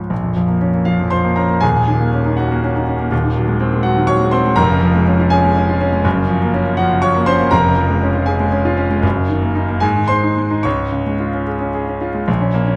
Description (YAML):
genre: classical, virtuoso piano study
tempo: 72-84 BPM (dotted quarters)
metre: 6/8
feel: rubato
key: Db major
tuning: A4 = 441 Hz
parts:
  - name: clear grand piano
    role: solo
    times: 0.0-12.8 s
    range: Eb1 to Db6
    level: -16 LUFS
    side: equal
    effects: none
room: wet scoring stage reverb, RT60 1.6 s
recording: none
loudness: -16 LUFS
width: mono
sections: 0.1-12.3 A section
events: none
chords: 0.1 Bbm; 1.6 Ebm7; 3.1 Ab7/Eb; 4.6 Db/F; 6.1 Gbmaj7; 7.5 Db/F; 9.0 Ebm7/Gb; 9.8 Ab; 10.6 Db